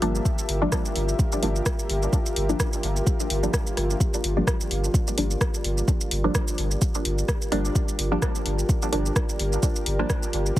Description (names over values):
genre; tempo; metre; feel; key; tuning
dub techno; 128 BPM; 4/4; swing 56% on 16ths; G dorian; A4 = 444 Hz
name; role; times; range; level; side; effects
dark analog pad; sustained chords; 0.0-10.6 s; F4 to E5; -30 LUFS; equal; chorus, sidechain pumping
filtered dub chord stab; stabs; 0.0-10.1 s; F3 to D4; -29 LUFS; equal; chorus, phaser, sidechain pumping, dub echo
soft dub sub bass; bass; 0.0-10.5 s; G1; -26 LUFS; equal; sidechain pumping
deep house drum kit; drums; 0.0-10.6 s; hi-hat, rim click, shaker; -30 LUFS; equal; overdrive
electronic kick drum; drums; 0.3-10.6 s; none; -24 LUFS; equal; overdrive
room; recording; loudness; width
light reverb; heavily compressed radio sound, multiband compression; -22 LUFS; side -14 dB against mid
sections
0.0-10.6 A section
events
none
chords
0.0 Gm7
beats
| 0.25 0.72 1.19 1.66 | 2.13 2.60 3.07 3.54 | 4.00 4.47 4.94 5.41 | 5.88 6.35 6.82 7.29 | 7.75 8.22 8.69 9.16 | 9.63 10.10 10.57